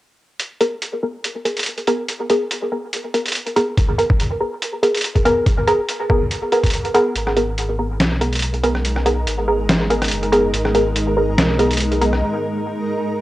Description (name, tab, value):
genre	deep dubstep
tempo	142 BPM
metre	4/4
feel	swing 54% on 16ths, half-time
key	G# minor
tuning	A4 = 441 Hz
part	trip hop sampler-style drum kit	drums	0.4-12.2 s	hi-hat, rim click, snare drum	-22 LUFS	equal	cassette tape
part	filtered dub chord stab	stabs	0.6-12.1 s	B3 to A#4	-19 LUFS	equal	wide subtle chorus, dub echo
part	electronic kick drum	drums	3.8-6.7 s	none	-17 LUFS	equal	cassette tape
part	granular cloud pad	sustained chords	8.2-13.2 s	G#3 to A#4	-23 LUFS	equal	built-in reverb
part	dark detuned saw bass	bass	7.2-12.2 s	F#1 to B1	-22 LUFS	equal	tube saturation
room	light reverb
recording	home recording on cassette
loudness	-16 LUFS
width	side -16 dB against mid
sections	0.4-7.2 A section; 7.2-13.2 B section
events	filter sweep on synth stab 0.4-7.2; kick drops out 6.7-7.2; build-up 7.2-13.2; break 12.2-13.2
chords	0.4 G#madd9